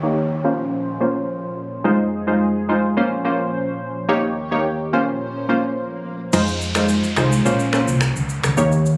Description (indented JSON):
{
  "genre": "afrobeats",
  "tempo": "107 BPM",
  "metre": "4/4",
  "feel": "straight",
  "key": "Bb dorian",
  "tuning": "A4 = 440 Hz",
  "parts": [
    { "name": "glassy wavetable pluck", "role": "accompaniment", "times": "0.0-8.8 s", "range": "Ab3 to Db5", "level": "-22 LUFS", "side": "equal", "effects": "chorus, low-pass filter" },
    { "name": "warm analog pad", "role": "sustained chords", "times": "0.0-6.3 s", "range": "Eb2 to Db5", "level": "-29 LUFS", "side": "equal", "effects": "chorus, low-pass filter" },
    { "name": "downlifter and swell", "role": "sound effects", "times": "0.0-9.0 s", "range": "none", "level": "-35 LUFS", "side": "equal", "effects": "none" },
    { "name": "hollow-body short-scale fingered electric bass", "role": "bass", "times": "6.3-9.0 s", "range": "Bb1 to F2", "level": "-22 LUFS", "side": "equal", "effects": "none" },
    { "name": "afro-pop drum kit", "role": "drums", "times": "6.3-9.0 s", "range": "crash cymbal, finger snaps, rim click, shaker", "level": "-28 LUFS", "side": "equal", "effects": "none" }
  ],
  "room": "light reverb",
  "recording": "recorded on a phone in the room, studio reverb",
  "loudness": "-20 LUFS",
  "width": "mono",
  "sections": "0.0-6.3 A section; 6.3-9.0 B section",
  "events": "filter sweep 0.0-6.3; kick muted 6.3-9.0",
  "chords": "0.4 Bbmadd9; 1.8 Fm7; 3.0 Bbmadd9; 4.1 Eb7; 4.9 Bbmadd9; 6.3 Fm7; 7.5 Bbmadd9"
}